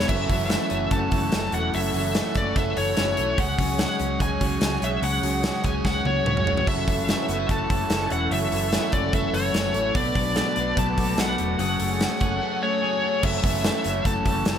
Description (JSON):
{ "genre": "jangly indie pop", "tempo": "146 BPM", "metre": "4/4", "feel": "straight", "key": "F# minor", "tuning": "A4 = 441 Hz", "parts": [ { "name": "smooth overdriven lead guitar", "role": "melody", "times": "0.0-14.6 s", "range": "C#5 to A5", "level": "-26 LUFS", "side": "equal", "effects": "tape echo" }, { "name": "combo organ", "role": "accompaniment", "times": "0.0-14.6 s", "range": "C#4 to G#5", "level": "-33 LUFS", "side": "right 4 dB", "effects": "none" }, { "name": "overdriven semi-hollow guitar", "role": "accompaniment", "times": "0.0-14.6 s", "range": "F#2 to A4", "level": "-33 LUFS", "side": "right 2 dB", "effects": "phaser" }, { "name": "string machine, violas", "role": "sustained chords", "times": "0.0-13.2 s", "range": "A3 to D6", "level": "-36 LUFS", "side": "equal", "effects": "ensemble chorus" }, { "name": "twelve-string electric guitar", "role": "arpeggios", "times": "0.0-14.6 s", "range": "F#2 to G#4", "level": "-29 LUFS", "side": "left 4 dB", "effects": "lush chorus" }, { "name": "vintage muted fingered electric bass", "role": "bass", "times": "0.0-14.6 s", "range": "E1 to C#2", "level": "-29 LUFS", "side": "equal", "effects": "none" }, { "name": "big rock drum kit", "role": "drums", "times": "0.0-14.6 s", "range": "crash cymbal, hi-hat, kick drum, snare drum, splash cymbal, toms", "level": "-26 LUFS", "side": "equal", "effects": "none" } ], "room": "moderate small room reverb, RT60 0.6 s", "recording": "none", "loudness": "-21 LUFS", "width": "side -8 dB against mid", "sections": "0.1-13.2 A section; 13.2-14.6 A section", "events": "drum fill 5.8-6.7; transistor combo organ fill 12.6-13.2", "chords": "0.1 F#m7; 3.4 C#sus4; 6.7 F#m7; 10.0 Bm7; 11.6 F#madd9; 13.2 F#m7", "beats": "| 0.09 0.50 0.92 1.33 | 1.74 2.15 2.56 2.97 | 3.38 3.79 4.20 4.62 | 5.03 5.44 5.85 6.26 | 6.67 7.08 7.49 7.90 | 8.31 8.72 9.13 9.54 | 9.95 10.36 10.77 11.18 | 11.59 12.00 12.41 12.82 | 13.23 13.64 14.05 14.46" }